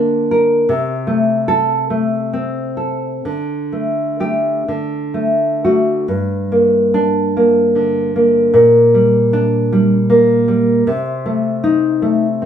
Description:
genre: romantic piece for solo classical guitar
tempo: 40-53 BPM (dotted quarters)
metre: 6/8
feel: rubato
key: G minor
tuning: A4 = 442 Hz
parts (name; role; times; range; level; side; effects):
- nylon-string guitar; solo; 0.0-12.5 s; G2 to Bb4; -13 LUFS; equal; none
room: moderate large studio reverb, RT60 0.8 s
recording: band playing live in one room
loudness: -13 LUFS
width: side -9 dB against mid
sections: 0.0-6.1 A section; 6.1-12.5 A section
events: none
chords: 0.0 Bb/D; 0.7 Am/C; 3.2 Dsus4; 4.7 D; 6.1 Gm; 8.5 Gm/Bb; 10.9 Adim/C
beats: | 0.69 1.91 | 3.24 4.66 | 6.09 7.34 | 8.53 9.70 | 10.85 12.02

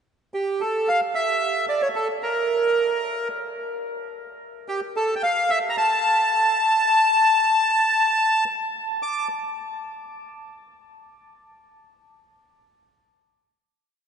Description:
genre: tango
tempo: 111 BPM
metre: 4/4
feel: rubato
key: unclear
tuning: A4 = 441 Hz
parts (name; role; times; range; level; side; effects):
- bandoneon; solo; 0.3-9.3 s; G4 to D6; -20 LUFS; equal; none
room: wet cathedral reverb, RT60 6.5 s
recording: recorded in a church or concert hall, nothing above 10.4 kHz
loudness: -19 LUFS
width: side -7 dB against mid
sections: 0.3-9.0 A section; 9.0-11.2 final note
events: none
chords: none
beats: | 0.34 0.88 1.43 1.97 | 2.51 3.06 3.60 4.14 | 4.68 5.22 5.76 6.30 | 6.84 7.39 7.93 8.48 | 9.02

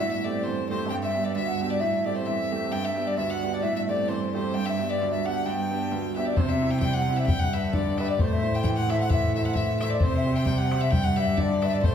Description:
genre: celtic folk, Celtic polka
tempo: 132 BPM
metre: 2/4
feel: swing 55% on 8ths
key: G major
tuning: A4 = 440 Hz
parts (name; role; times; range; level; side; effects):
- mellow baroque flute; melody; 0.0-11.9 s; C5 to A5; -29 LUFS; left 1 dB; none
- bright fiddle; second line; 0.0-11.9 s; C5 to G5; -32 LUFS; left 5 dB; none
- bright grand piano; accompaniment; 0.0-11.9 s; D2 to E5; -29 LUFS; right 3 dB; none
- rich cello; drone; 0.0-6.4 s; G2; -33 LUFS; right 6 dB; none
- rich cello; bass; 6.4-11.9 s; G2 to C3; -27 LUFS; left 1 dB; none
- bodhran; percussion; 6.4-11.9 s; none; -27 LUFS; left 2 dB; none
room: wet recital hall reverb, RT60 1.7 s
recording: heard from further back in the room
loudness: -23 LUFS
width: side -8 dB against mid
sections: 0.0-6.4 A section; 6.4-11.9 B section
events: none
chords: 0.0 Am7; 0.9 G; 1.8 Am7; 2.7 G; 3.6 Am7; 4.5 G; 6.4 C; 7.3 G; 8.2 Am; 10.0 C; 10.9 G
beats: 0.45 | 0.90 1.36 | 1.81 2.27 | 2.72 3.18 | 3.63 4.09 | 4.54 5.00 | 5.46 5.91 | 6.37 6.82 | 7.28 7.73 | 8.19 8.64 | 9.10 9.55 | 10.01 10.46 | 10.91 11.37 | 11.82

